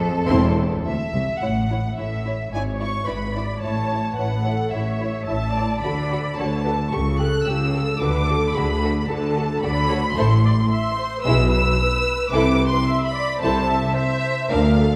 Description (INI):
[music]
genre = quick classical-period movement for string orchestra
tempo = 110 BPM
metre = 4/4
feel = straight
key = A major, A minor from 10.2 s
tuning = A4 = 441 Hz
[part]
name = clear chamber violin section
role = second line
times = 0.0-14.8 s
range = D4 to D5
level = -31 LUFS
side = equal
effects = none
[part]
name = rich studio cello section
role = bass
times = 0.0-15.0 s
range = C2 to D3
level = -26 LUFS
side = equal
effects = none
[part]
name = rich chamber violin section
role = melody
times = 0.3-15.0 s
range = E5 to F#6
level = -28 LUFS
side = equal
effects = none
[part]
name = warm symphonic viola section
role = accompaniment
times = 0.3-15.0 s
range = C4 to E5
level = -29 LUFS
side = equal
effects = none
[part]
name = clear chamber double bass section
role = bass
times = 0.3-15.0 s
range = E1 to D2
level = -27 LUFS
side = equal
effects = none
[sound]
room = moderate scoring stage reverb, RT60 2.0 s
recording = dark, warm production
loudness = -21 LUFS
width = mono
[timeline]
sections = 0.0-1.4 A section; 1.4-15.0 B section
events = none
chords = 0.0 Am; 1.4 A; 2.5 E7/G#; 3.6 A; 5.8 D; 6.9 A7/C#; 8.0 D; 10.2 Am; 11.3 E/B; 12.3 Am/C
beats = 0.28 0.85 | 1.42 1.98 2.53 3.07 | 3.62 4.17 4.72 5.27 | 5.82 6.37 6.92 7.46 | 8.00 8.55 9.09 9.63 | 10.17 10.71 11.25 11.79 | 12.33 12.88 13.43 13.97 | 14.51